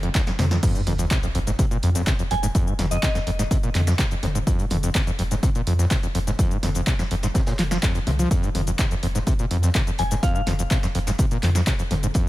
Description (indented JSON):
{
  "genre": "acid house",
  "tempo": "125 BPM",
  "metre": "4/4",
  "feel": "straight",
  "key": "F minor",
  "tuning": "A4 = 440 Hz",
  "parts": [
    { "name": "warm analog pad", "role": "sustained chords", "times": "0.0-0.6 s", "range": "none", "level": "barely audible", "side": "none", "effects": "none" },
    { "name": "overdriven acid bass", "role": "riff", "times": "0.0-12.3 s", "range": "Eb2 to F3", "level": "-25 LUFS", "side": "equal", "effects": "distortion, tube saturation, analog chorus, sidechain pumping, ping-pong delay" },
    { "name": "warm sub bass", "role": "bass", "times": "0.0-12.1 s", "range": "F1 to F2", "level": "-24 LUFS", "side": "equal", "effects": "sidechain pumping" },
    { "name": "punchy analog drum machine", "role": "drums", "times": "0.0-12.2 s", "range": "cabasa, crash cymbal, handclaps, hi-hat, snare drum, toms", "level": "-28 LUFS", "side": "left 1 dB", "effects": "none" },
    { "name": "crunchy breakbeat drum kit", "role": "drums", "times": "0.1-12.3 s", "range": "hi-hat, snare drum", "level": "-40 LUFS", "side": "equal", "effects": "none" },
    { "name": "electronic kick drum", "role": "drums", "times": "0.1-12.2 s", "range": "none", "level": "-22 LUFS", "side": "equal", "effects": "none" },
    { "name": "sub drop", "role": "sound effects", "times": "0.7-2.5 s", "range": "none", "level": "-31 LUFS", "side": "equal", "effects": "none" },
    { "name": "soft synth bell", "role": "melody", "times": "2.3-3.1, 10.0-10.4 s", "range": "Eb5 to Ab5", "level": "-30 LUFS", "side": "left 1 dB", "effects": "chorus, phaser, ping-pong delay" }
  ],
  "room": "little or no reverb",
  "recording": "none",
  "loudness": "-20 LUFS",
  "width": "side -16 dB against mid",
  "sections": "0.6-12.3 A section",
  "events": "drum fill 0.1-0.6; drop 0.6-12.3; impact 0.6-2.5",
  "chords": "0.0 F5",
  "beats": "0.15 | 0.63 1.11 1.59 2.07 | 2.55 3.03 3.51 3.99 | 4.47 4.95 5.43 5.91 | 6.39 6.87 7.35 7.83 | 8.31 8.79 9.27 9.75 | 10.23 10.71 11.19 11.67 | 12.15"
}